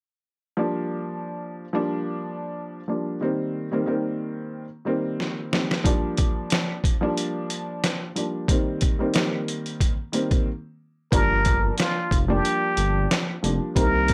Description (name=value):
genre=hip hop, boom-bap hip-hop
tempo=91 BPM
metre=4/4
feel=swing 55% on 16ths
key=G minor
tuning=A4 = 440 Hz
part: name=dark upright piano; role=accompaniment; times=0.6-14.1 s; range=Eb3 to D4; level=-29 LUFS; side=equal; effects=cassette tape, high-pass filter, low-pass filter
part: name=trip hop sampler-style drum kit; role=drums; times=5.2-14.1 s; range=hi-hat, kick drum, snare drum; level=-26 LUFS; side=equal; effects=none
part: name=trumpet with plunger mute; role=melody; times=11.1-14.1 s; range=F4 to Bb4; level=-26 LUFS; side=equal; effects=high-pass filter, low-pass filter
part: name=smooth synth bass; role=bass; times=11.1-14.1 s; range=F1 to C2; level=-26 LUFS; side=equal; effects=transformer saturation
room=little or no reverb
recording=dry, gritty hardware recording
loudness=-25 LUFS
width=mono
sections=0.6-11.1 A section; 11.1-14.1 B section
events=drum fill 5.2-5.8; break 10.5-11.1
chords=0.6 Gm7; 3.2 Cm7; 5.8 Gm7; 8.5 Cm7; 11.1 Gm7